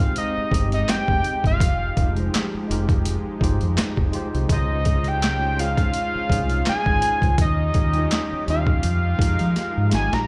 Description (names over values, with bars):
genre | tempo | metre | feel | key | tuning
R&B, neo-soul | 83 BPM | 4/4 | swing 56% on 16ths | F minor | A4 = 439 Hz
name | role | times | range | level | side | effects
fat analog lead | melody | 0.0-10.3 s | Eb5 to Bb5 | -27 LUFS | equal | slapback echo
tine electric piano | accompaniment | 0.0-10.3 s | G3 to Eb5 | -32 LUFS | equal | overdrive, slapback echo
warm analog pad | sustained chords | 0.0-10.3 s | Eb3 to C5 | -36 LUFS | equal | chorus
boom bap sampler-style drum kit | drums | 0.0-10.3 s | handclaps, hi-hat, kick drum, snare drum | -24 LUFS | equal | overdrive
deep dub fingered electric bass | bass | 0.4-10.3 s | F1 to F3 | -25 LUFS | equal | none
room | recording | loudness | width
digital ambience | live gig heard through the venue's PA, club reverb | -21 LUFS | mono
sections
0.0-10.3 A section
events
drum fill 9.6-10.3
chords
0.0 Abmaj7; 1.6 Fm9; 4.5 Dbmaj9; 7.4 Eb9; 8.8 Fm11